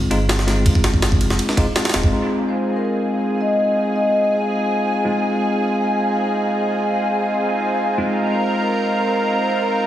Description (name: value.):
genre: drum and bass, jungle.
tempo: 164 BPM.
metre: 4/4.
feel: straight.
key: F minor.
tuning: A4 = 439 Hz.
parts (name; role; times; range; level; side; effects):
bell-like tine electric piano; stabs; 0.0-9.9 s; Ab3 to F4; -22 LUFS; left 1 dB; low-pass filter, dub echo.
saturated sub bass; bass; 0.0-2.1 s; Eb1 to G1; -20 LUFS; equal; none.
jungle sampler-style drum kit; drums; 0.1-2.1 s; kick drum, ride cymbal, snare drum; -18 LUFS; right 1 dB; studio reverb.
lush unison pad; sustained chords; 2.4-9.9 s; C4 to Bb4; -20 LUFS; equal; chorus.
vibraphone with medium mallets; melody; 2.5-4.3, 8.3-9.9 s; Bb4 to Eb5; -22 LUFS; equal; dub echo.
room: wet echo chamber reverb, RT60 2.1 s.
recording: heavily compressed radio sound, multiband compression, small room ambience.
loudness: -16 LUFS.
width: side -12 dB against mid.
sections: 0.0-2.1 A section; 2.1-9.9 B section.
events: filter sweep on tine electric piano 2.1-9.9.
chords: 0.0 Fm7.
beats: 0.29 | 0.66 1.02 1.39 1.76 | 2.12 2.49 2.85 3.22 | 3.58 3.95 4.32 4.68 | 5.05 5.41 5.78 6.15 | 6.51 6.88 7.24 7.61 | 7.97 8.34 8.71 9.07 | 9.44 9.80.